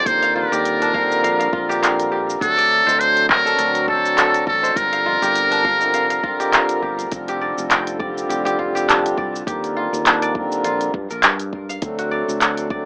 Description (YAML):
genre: organic downtempo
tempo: 102 BPM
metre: 4/4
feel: swing 55% on 16ths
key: unclear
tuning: A4 = 441 Hz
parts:
  - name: trumpet with metal mute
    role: melody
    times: 0.0-6.8 s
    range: A4 to C5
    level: -18 LUFS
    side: equal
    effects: tape echo
  - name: pedal harmonium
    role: accompaniment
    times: 0.0-12.9 s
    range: D3 to Bb4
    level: -22 LUFS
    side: equal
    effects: sidechain pumping, tape echo
  - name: kora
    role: arpeggios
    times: 0.0-12.9 s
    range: D4 to G5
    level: -24 LUFS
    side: equal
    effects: tape echo
  - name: sustaining fretless electric bass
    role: bass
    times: 0.1-12.9 s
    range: F1 to G2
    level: -29 LUFS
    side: equal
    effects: tube saturation
  - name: electronic kick drum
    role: drums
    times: 0.1-12.8 s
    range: none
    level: -28 LUFS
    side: equal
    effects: none
  - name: organic electronic drum kit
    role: drums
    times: 0.1-12.7 s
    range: handclaps, hi-hat, shaker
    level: -17 LUFS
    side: equal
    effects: none
  - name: tabla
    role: percussion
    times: 0.4-7.1 s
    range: none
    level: -39 LUFS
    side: equal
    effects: none
room: moderate small room reverb, RT60 0.5 s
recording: rough home demo mix, AM radio sound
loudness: -16 LUFS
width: side -35 dB against mid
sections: 0.0-7.1 A section; 7.1-12.9 A section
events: none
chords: 0.1 Ebmaj7; 2.4 D7; 4.8 Gm7; 7.1 F; 9.5 Ebmaj7; 11.8 D7